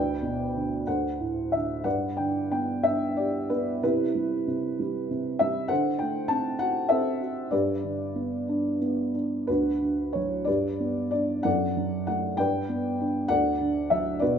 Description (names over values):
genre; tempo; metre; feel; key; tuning
classical, lyrical solo piano; 60-67 BPM (dotted quarters); 6/8; rubato; G major, D major from 9.5 s; A4 = 440 Hz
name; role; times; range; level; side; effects
felt-muted upright piano; solo; 0.0-14.4 s; D2 to A5; -24 LUFS; equal; none
room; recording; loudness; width
moderate recital hall reverb, RT60 1.4 s; minimal, uncompressed stereo recording, faint mains hum; -24 LUFS; side -7 dB against mid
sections
0.0-9.5 A section; 9.5-14.4 B section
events
none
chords
0.0 G/D; 0.9 D7; 1.9 G; 3.8 Cmaj7; 5.7 D7; 7.5 G; 9.5 D; 10.5 G; 11.5 D/F#; 12.4 G; 13.3 D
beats
0.87 | 1.85 2.84 | 3.83 4.79 | 5.71 6.61 | 7.53 8.48 | 9.48 10.48 | 11.46 12.40 | 13.31 14.22